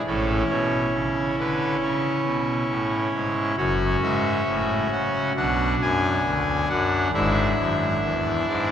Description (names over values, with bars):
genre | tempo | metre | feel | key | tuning
classical, chorale-style piece for pipe organ | 67 BPM | 4/4 | rubato | A major | A4 = 438 Hz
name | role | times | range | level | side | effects
pipe organ, trumpet | solo | 0.0-8.7 s | F#1 to G#5 | -21 LUFS | equal | none
room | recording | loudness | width
wet cathedral reverb, RT60 6.4 s | none | -21 LUFS | side -9 dB against mid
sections
0.0-8.7 A section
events
none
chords
0.1 A; 3.6 F#m; 5.4 Bm; 7.2 E7/G#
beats
| 0.05 0.93 1.82 2.71 | 3.59 4.48 5.38 6.27 | 7.16 8.05